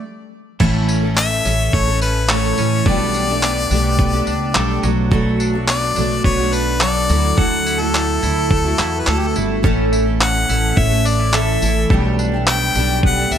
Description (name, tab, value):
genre	acoustic pop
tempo	106 BPM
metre	4/4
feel	straight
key	unclear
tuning	A4 = 440 Hz
part	bright harmonica	melody	0.0-13.4 s	G4 to G5	-20 LUFS	left 3 dB	none
part	twelve-string electric guitar	arpeggios	0.0-13.4 s	E3 to A4	-26 LUFS	right 6 dB	ping-pong delay
part	picked steel-string acoustic guitar	accompaniment	0.6-13.4 s	A2 to A4	-20 LUFS	right 1 dB	double-tracked left and right
part	upright bass	bass	0.6-13.4 s	G1 to E2	-20 LUFS	equal	none
part	dusty soul sampler-style drum kit	drums	0.6-13.4 s	crash cymbal, handclaps, kick drum, tambourine	-20 LUFS	equal	overdrive
room	moderate plate reverb, RT60 1.9 s, small room ambience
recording	bright 1980s-style digital production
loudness	-14 LUFS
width	side -9 dB against mid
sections	0.6-13.4 A section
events	stop 0.0-0.6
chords	0.0 N.C.; 0.6 A; 2.9 Gadd9/B; 4.8 Bm7; 7.1 Dadd9; 9.6 A; 11.9 Gadd9/B